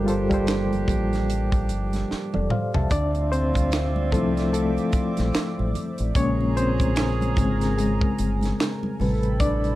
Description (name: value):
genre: R&B, neo-soul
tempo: 74 BPM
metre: 4/4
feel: swing 59% on 16ths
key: D minor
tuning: A4 = 440 Hz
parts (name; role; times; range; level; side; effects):
- reed electric piano; accompaniment; 0.0-9.8 s; C3 to A5; -24 LUFS; left 2 dB; overdrive, fast tremolo, plate reverb
- chorused pulse-width pad; sustained chords; 0.0-9.8 s; F3 to D6; -35 LUFS; right 4 dB; plate reverb
- mellow horn section; stabs; 0.0-9.8 s; A3 to A4; -34 LUFS; right 4 dB; slapback echo, plate reverb
- deep dub fingered electric bass; bass; 0.0-9.8 s; F1 to D2; -26 LUFS; equal; none
- tight funk drum kit; drums; 0.1-9.8 s; finger snaps, hi-hat, kick drum, snare drum, toms; -26 LUFS; equal; none
- congas; percussion; 0.3-9.8 s; none; -35 LUFS; right 4 dB; none
room: light reverb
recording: dark, warm production, lossy compression artefacts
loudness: -21 LUFS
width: side -16 dB against mid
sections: 0.0-2.9 A section; 2.9-9.8 A section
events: drum fill 2.1-2.9; reed electric piano solo 2.9-9.8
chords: 0.0 Gm9; 2.9 Dm9; 6.2 Bbm9; 9.0 Am9